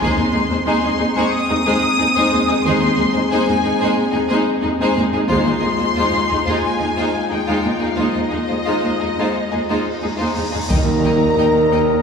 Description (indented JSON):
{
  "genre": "cinematic, epic orchestral film score",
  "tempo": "90 BPM",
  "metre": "4/4",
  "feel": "straight",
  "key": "unclear",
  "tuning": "A4 = 440 Hz",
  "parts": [
    { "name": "clear symphonic violin section", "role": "melody", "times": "0.0-12.0 s", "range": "Eb5 to Eb6", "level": "-22 LUFS", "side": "left 3 dB", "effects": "none" },
    { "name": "bright symphonic violin section", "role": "second line", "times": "0.0-11.8 s", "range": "Eb4 to G5", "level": "-24 LUFS", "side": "left 2 dB", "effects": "none" },
    { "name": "rich symphonic viola section", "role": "accompaniment", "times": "0.0-11.8 s", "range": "Ab3 to Eb4", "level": "-22 LUFS", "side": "equal", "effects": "none" },
    { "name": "mellow French horn section", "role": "sustained chords", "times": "0.0-12.0 s", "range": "Ab3 to Bb4", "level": "-22 LUFS", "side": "left 1 dB", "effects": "none" },
    { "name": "dark symphonic cello section", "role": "bass", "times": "0.0-12.0 s", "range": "Eb2", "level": "-23 LUFS", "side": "right 2 dB", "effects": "none" },
    { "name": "rich symphonic double bass section", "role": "bass", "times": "0.0-12.0 s", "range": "Eb2", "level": "-25 LUFS", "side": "right 2 dB", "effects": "none" },
    { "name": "taiko ensemble", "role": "drums", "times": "0.0-1.3, 5.3-6.6, 10.7-11.3 s", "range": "none", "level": "-26 LUFS", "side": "equal", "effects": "none" },
    { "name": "cymbal swell and impact", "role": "sound effects", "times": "9.8-12.0 s", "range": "none", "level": "-30 LUFS", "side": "equal", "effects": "none" },
    { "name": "clear woodwind section", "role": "sustained chords", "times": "10.7-12.0 s", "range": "G3 to Eb5", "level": "-25 LUFS", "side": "left 2 dB", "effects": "none" },
    { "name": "warm tuba", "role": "bass", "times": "10.7-12.0 s", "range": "Eb2", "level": "-22 LUFS", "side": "right 2 dB", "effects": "none" },
    { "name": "timpani", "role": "percussion", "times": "10.7-11.7 s", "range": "Eb3", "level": "-27 LUFS", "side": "left 2 dB", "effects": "none" }
  ],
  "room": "wet concert hall reverb, RT60 2.3 s",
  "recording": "recorded in a church or concert hall, studio reverb",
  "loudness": "-15 LUFS",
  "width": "side -6 dB against mid",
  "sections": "0.0-10.7 A section; 10.7-12.0 A section",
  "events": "cymbal swell 9.8-10.7; impact 10.7-12.0",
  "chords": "0.0 Ab/Eb; 5.3 Fm7/Eb; 10.7 Eb"
}